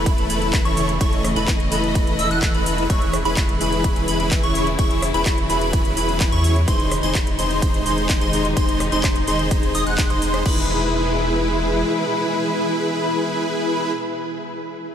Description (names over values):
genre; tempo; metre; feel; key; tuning
EDM, festival progressive house; 127 BPM; 4/4; straight; E major; A4 = 439 Hz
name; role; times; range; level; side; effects
warm studio string section; sustained chords; 0.0-13.9 s; B2 to D#5; -26 LUFS; left 1 dB; sidechain pumping
plucky unison lead; arpeggios; 0.0-13.9 s; B5 to F#6; -26 LUFS; equal; phaser, sidechain pumping, diffuse ambient delay
dense compressed supersaw; riff; 0.0-13.9 s; D#4 to F#5; -23 LUFS; equal; sidechain pumping, diffuse ambient delay
saturated sub bass; bass; 0.0-11.8 s; E1 to E2; -25 LUFS; equal; tube saturation, sidechain pumping
electronic kick drum; drums; 0.1-10.6 s; none; -21 LUFS; equal; none
house drum kit; drums; 0.1-10.6 s; crash cymbal, handclaps, hi-hat, ride cymbal, rim click; -28 LUFS; equal; overdrive
room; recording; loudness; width
moderate huge ambient reverb, RT60 8.6 s; dreamy mix soaked in reverb; -17 LUFS; side -9 dB against mid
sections
0.0-10.5 A section; 10.5-14.2 B section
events
drop 0.0-10.5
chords
0.0 A/E; 2.9 C#m/E; 6.7 G#/E; 10.5 E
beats
0.06 0.54 | 1.01 1.48 1.95 2.43 | 2.90 3.37 3.84 4.32 | 4.79 5.26 5.73 6.21 | 6.68 7.15 7.62 8.10 | 8.57 9.04 9.51 9.98 | 10.46 10.93 11.40 11.88 | 12.35 12.82 13.29 13.76